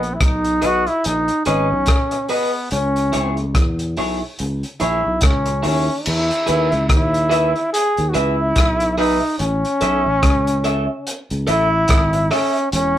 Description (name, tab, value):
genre	roots reggae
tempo	72 BPM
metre	4/4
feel	swing 59% on 16ths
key	unclear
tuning	A4 = 438 Hz
part	bright trombone	melody	0.0-13.0 s	B3 to G#4	-19 LUFS	equal	none
part	sustaining fretless electric bass	bass	0.0-13.0 s	E1 to E2	-22 LUFS	equal	none
part	crunchy breakbeat drum kit	drums	0.0-13.0 s	crash cymbal, hi-hat, kick drum, rim click	-20 LUFS	equal	slapback echo
part	electric guitar at the edge of break-up	accompaniment	0.6-12.5 s	E4 to E5	-21 LUFS	equal	none
room	moderate studio reverb, RT60 0.6 s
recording	band playing live in one room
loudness	-16 LUFS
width	side -12 dB against mid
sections	0.0-6.1 A section; 6.1-13.0 B section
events	none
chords	0.0 G#m; 2.7 C#m; 6.1 E; 9.4 A